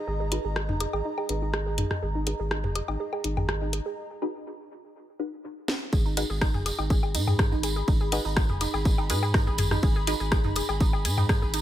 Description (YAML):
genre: minimal techno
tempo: 123 BPM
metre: 4/4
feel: straight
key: G# minor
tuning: A4 = 436 Hz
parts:
  - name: airy breathy pad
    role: texture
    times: 0.0-4.0, 7.1-11.6 s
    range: G#4 to B5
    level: -37 LUFS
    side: right 2 dB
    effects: chorus, sidechain pumping
  - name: resonant blip pluck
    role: riff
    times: 0.1-11.6 s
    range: D#4 to G#4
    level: -33 LUFS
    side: right 2 dB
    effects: chorus, sidechain pumping, dub echo
  - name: saturated sub bass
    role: bass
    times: 0.1-11.6 s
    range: F#1 to G#2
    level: -30 LUFS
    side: equal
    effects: sidechain pumping
  - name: filtered dub chord stab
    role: stabs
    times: 0.3-10.1 s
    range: D#4 to B4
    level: -35 LUFS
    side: left 2 dB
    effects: phaser, analog chorus, dub echo
  - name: house drum kit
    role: drums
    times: 0.3-11.6 s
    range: hi-hat, rim click, snare drum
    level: -31 LUFS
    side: left 1 dB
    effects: none
  - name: electronic toms and woodblock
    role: percussion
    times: 0.7-3.5, 6.5-11.3 s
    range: none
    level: -31 LUFS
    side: left 2 dB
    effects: overdrive
  - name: electronic kick drum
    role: drums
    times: 5.9-11.4 s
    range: none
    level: -24 LUFS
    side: equal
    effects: none
  - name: tambourine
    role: percussion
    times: 5.9-11.6 s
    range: none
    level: -36 LUFS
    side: right 3 dB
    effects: none
room: little or no reverb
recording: none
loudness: -24 LUFS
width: side -12 dB against mid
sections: 0.0-5.9 A section; 5.9-11.6 B section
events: filter sweep on synth pluck 0.0-5.9; filter sweep on synth stab 0.0-5.9; break 4.0-5.9; drum fill 5.7; drop 5.9-11.6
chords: 0.0 G#7(no3); 5.9 G#m7